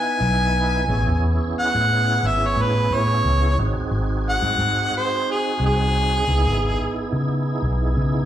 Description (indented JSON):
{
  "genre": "straight-eighth soul blues",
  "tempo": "89 BPM",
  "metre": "4/4",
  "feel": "swing 54% on 16ths",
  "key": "C# minor",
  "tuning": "A4 = 439 Hz",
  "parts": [
    { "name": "clear harmonica", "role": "melody", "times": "0.0-6.9 s", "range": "G#4 to G#5", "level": "-21 LUFS", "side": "equal", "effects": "overdrive, slapback echo" },
    { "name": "tonewheel organ", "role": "accompaniment", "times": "0.0-8.3 s", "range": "B3 to B4", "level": "-26 LUFS", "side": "right 4 dB", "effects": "slow rotary speaker, overdrive, chorus vibrato, slapback echo" },
    { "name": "vintage muted fingered electric bass", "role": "bass", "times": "0.2-8.3 s", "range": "G#1 to C#3", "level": "-21 LUFS", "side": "equal", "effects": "none" }
  ],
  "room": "light reverb",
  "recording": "live gig heard through the venue's PA, club reverb",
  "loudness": "-18 LUFS",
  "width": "side -11 dB against mid",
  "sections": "0.0-8.3 A section",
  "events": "harmonica solo 0.0-8.3",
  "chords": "0.0 C#m7 (rootless); 0.9 Amaj7; 3.6 G#7; 6.3 C#m7",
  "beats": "0.21 | 0.89 1.56 2.24 2.91 | 3.59 4.26 4.94 5.61 | 6.29 6.96 7.63"
}